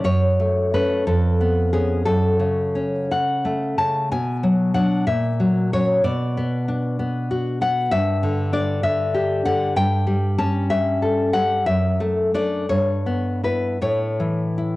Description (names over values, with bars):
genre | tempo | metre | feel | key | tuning
romantic piece for solo classical guitar | 52-66 BPM (dotted quarters) | 6/8 | rubato | F# minor | A4 = 440 Hz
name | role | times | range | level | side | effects
nylon-string guitar | solo | 0.0-14.8 s | E#2 to A5 | -18 LUFS | left 1 dB | cassette tape
room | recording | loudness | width
light reverb, small room ambience | home recording on cassette | -18 LUFS | side -18 dB against mid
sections
0.1-14.8 A section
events
none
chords
0.1 F#m; 1.1 C#7/E#; 2.1 F#m; 4.1 Bm; 5.1 F#7/A#; 6.0 Bm; 7.9 Em7/G; 9.8 A7/G; 11.7 D/F#; 12.7 Em/G; 13.8 A